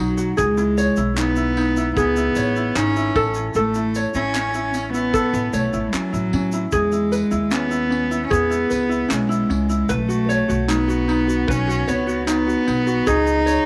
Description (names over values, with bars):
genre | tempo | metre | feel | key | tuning
acoustic pop | 76 BPM | 4/4 | straight | E major | A4 = 440 Hz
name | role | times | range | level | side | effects
warm cello | melody | 0.0-13.7 s | F#3 to D#4 | -24 LUFS | equal | tape echo
ukulele | accompaniment | 0.0-13.7 s | C#4 to C#5 | -24 LUFS | equal | none
upright bass | bass | 0.0-13.6 s | G#1 to A2 | -29 LUFS | equal | none
egg shaker | percussion | 0.2-13.7 s | none | -41 LUFS | equal | none
modern studio drum kit | drums | 0.4-13.7 s | handclaps, kick drum, tambourine | -33 LUFS | equal | none
room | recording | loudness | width
studio reverb | none | -20 LUFS | mono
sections
0.0-13.7 A section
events
none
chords
0.4 C#madd9; 3.2 A; 6.7 E6; 9.9 Badd9; 13.1 C#sus2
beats
| 0.38 1.17 1.97 2.76 | 3.55 4.34 5.14 5.93 | 6.72 7.52 8.31 9.11 | 9.90 10.69 11.48 12.28 | 13.07